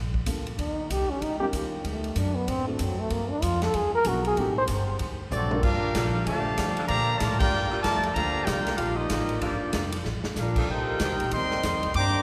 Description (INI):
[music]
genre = jazz, big band swing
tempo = 190 BPM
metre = 4/4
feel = swing 62% on 8ths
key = G minor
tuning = A4 = 439 Hz
[part]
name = upright bass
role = bass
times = 0.0-12.2 s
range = F1 to Bb2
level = -33 LUFS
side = equal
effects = none
[part]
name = swinging big-band drum kit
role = drums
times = 0.1-12.0 s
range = crash cymbal, hi-hat, kick drum, ride cymbal, snare drum, toms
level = -34 LUFS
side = equal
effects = none
[part]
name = dark baby grand piano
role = accompaniment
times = 0.3-5.6 s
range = F#3 to Bb4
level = -38 LUFS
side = equal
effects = none
[part]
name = warm trombone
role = melody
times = 0.6-4.6 s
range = Eb3 to C5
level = -30 LUFS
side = equal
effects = none
[part]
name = warm trumpet section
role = melody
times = 5.3-12.2 s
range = Bb3 to D6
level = -30 LUFS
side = equal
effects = none
[part]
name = mellow trombone section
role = second line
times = 5.3-12.2 s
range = D3 to G4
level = -34 LUFS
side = equal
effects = none
[part]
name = warm saxophone section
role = sustained chords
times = 5.9-11.1 s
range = D3 to A4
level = -40 LUFS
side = equal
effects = none
[sound]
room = wet church reverb, RT60 2.8 s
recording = recorded in a church or concert hall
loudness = -27 LUFS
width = mono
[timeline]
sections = 0.0-5.6 A section; 5.6-12.2 B section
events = trombone solo 0.0-5.6; drum fill 5.3-5.6, 10.1-10.4; band accent 7.4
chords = 0.0 Gm7; 0.6 Eb7; 1.8 D7; 3.1 Fsus2; 3.7 E7; 4.4 Am7b5; 5.0 D7b13; 5.6 Gm7; 10.7 Cm7